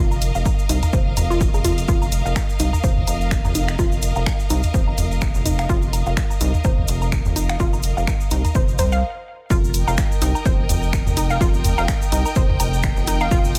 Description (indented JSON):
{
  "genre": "minimal techno",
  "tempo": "126 BPM",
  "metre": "4/4",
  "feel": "swing 56% on 16ths",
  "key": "unclear",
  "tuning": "A4 = 439 Hz",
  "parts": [
    { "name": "rubbery square bass", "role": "bass", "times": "0.0-13.6 s", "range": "F1 to C2", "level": "-25 LUFS", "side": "equal", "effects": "sidechain pumping" },
    { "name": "bright studio string section", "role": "texture", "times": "0.0-13.6 s", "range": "Bb4 to G5", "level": "-32 LUFS", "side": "equal", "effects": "sidechain pumping" },
    { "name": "egg shaker", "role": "percussion", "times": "0.1-13.6 s", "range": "none", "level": "-35 LUFS", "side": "equal", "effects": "none" },
    { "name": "electronic woodblock and toms", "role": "percussion", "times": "0.1-13.3 s", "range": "none", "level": "-26 LUFS", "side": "equal", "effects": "studio ambience, tape echo" },
    { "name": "house drum kit", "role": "drums", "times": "0.2-13.6 s", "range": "finger snaps, hi-hat", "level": "-30 LUFS", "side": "equal", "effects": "studio ambience" },
    { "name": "resonant blip pluck", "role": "riff", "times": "0.4-13.3 s", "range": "Eb4 to F5", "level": "-29 LUFS", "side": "equal", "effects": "chorus, sidechain pumping, tape echo" },
    { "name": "electronic kick drum", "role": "drums", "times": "0.5-13.4 s", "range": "none", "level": "-23 LUFS", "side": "equal", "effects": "studio ambience" }
  ],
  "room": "little or no reverb",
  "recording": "none",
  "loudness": "-20 LUFS",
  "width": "mono",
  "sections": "0.0-9.5 A section; 9.5-13.6 B section",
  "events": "filter sweep on synth pluck 0.0-9.5; stop 9.0-9.5; drop 9.5-13.6",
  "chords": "0.0 F7(no3)"
}